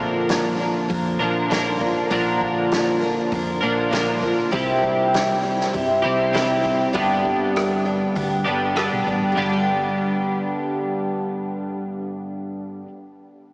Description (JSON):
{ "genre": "folk rock and heartland rock", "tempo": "99 BPM", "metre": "4/4", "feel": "straight", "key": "unclear", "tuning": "A4 = 437 Hz", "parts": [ { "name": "picked twelve-string acoustic guitar", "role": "accompaniment", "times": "0.0-13.0 s", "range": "G2 to Bb4", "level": "-22 LUFS", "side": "equal", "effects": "wide subtle chorus" }, { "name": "twelve-string electric guitar", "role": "riff", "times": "0.0-12.9 s", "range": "G2 to Bb4", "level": "-23 LUFS", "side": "equal", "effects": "ensemble chorus" }, { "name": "hollow-body short-scale fingered electric bass", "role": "bass", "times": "0.0-12.3 s", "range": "G1 to G2", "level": "-32 LUFS", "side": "equal", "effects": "none" }, { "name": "vintage drum kit", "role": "drums", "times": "0.3-9.2 s", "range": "hi-hat, kick drum, rim click, snare drum", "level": "-28 LUFS", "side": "equal", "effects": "none" } ], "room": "wet huge ambient reverb, RT60 4.8 s", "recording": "dreamy mix soaked in reverb, small speaker sound", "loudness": "-19 LUFS", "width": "side -29 dB against mid", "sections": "0.0-9.4 A section; 9.4-11.8 B section", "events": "none", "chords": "0.0 Bb; 4.5 C; 6.9 G" }